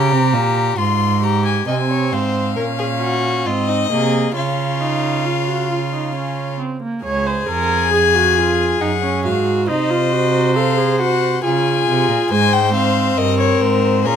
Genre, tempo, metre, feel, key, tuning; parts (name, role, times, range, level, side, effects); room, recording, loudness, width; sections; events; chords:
classical, baroque-style fugue for string quartet; 68 BPM; 3/4; straight; Db major; A4 = 437 Hz
warm violin; melody; 0.0-14.2 s; Bb4 to C6; -20 LUFS; left 11 dB
rich violin; second line; 0.0-14.2 s; Eb4 to Eb5; -22 LUFS; left 4 dB
rich cello; bass; 0.0-14.2 s; Db2 to Db3; -20 LUFS; right 5 dB
warm viola; accompaniment; 1.7-14.2 s; Ab3 to Db5; -20 LUFS; right 2 dB
light reverb; close, detailed microphones; -15 LUFS; side -8 dB against mid
0.0-1.7 A section; 1.7-7.0 B section; 7.0-14.2 C section
0.0 Gdim; 0.8 Fm/Ab; 1.7 Ab/C; 2.6 Gb/Bb; 3.5 Ab; 4.4 Db; 8.8 Ebm7/Gb (rootless); 9.7 Cdim7; 11.4 Db; 12.3 Ab